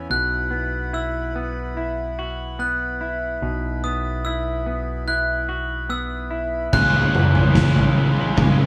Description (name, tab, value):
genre	post-rock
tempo	73 BPM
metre	4/4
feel	straight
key	unclear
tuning	A4 = 440 Hz
part	pedal harmonium	sustained chords	0.0-8.7 s	E4 to B5	-37 LUFS	equal	none
part	glockenspiel with brass mallets	arpeggios	0.0-7.6 s	D#6 to F#6	-28 LUFS	equal	none
part	semi-hollow electric guitar	arpeggios	0.0-8.7 s	B2 to G#4	-30 LUFS	equal	none
part	growling fingered electric bass	bass	0.0-8.7 s	B1 to C#3	-27 LUFS	equal	overdrive
part	cranked stack guitar	riff	6.7-8.6 s	C#3 to G#3	-27 LUFS	equal	overdrive
part	oversized low-tuned drum kit	drums	6.7-8.6 s	crash cymbal, kick drum, snare drum, toms	-21 LUFS	equal	none
room	light reverb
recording	band playing live in one room, studio ambience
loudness	-22 LUFS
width	mono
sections	0.0-6.7 A section; 6.7-8.7 B section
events	build-up 6.7-8.7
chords	0.1 Bsus4; 6.7 C#m7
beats	| 0.11 0.94 1.77 2.60 | 3.42 4.25 5.08 5.91 | 6.73 7.55 8.38